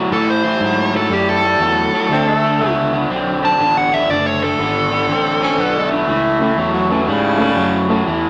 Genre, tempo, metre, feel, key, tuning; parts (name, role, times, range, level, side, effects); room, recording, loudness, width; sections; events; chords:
blues; 121 BPM; 4/4; swing 65% on 8ths; A major; A4 = 440 Hz
raw garage guitar; riff; 0.0-8.3 s; A2 to C4; -20 LUFS; equal; overdrive, spring reverb
fingered electric bass; bass; 0.0-8.3 s; F#1 to A2; -26 LUFS; equal
dark smooth lead guitar; melody; 0.1-5.9 s; G4 to A5; -19 LUFS; equal; overdrive
growling tenor saxophone; second line; 2.1-8.0 s; C#3 to C#4; -21 LUFS; equal
barky reed electric piano; accompaniment; 6.4-8.0 s; A3 to A4; -23 LUFS; equal; overdrive, fast tremolo
wet studio reverb, RT60 0.8 s; -16 LUFS; mono
0.0-8.3 A section
0.0 A5; 2.1 D; 6.1 A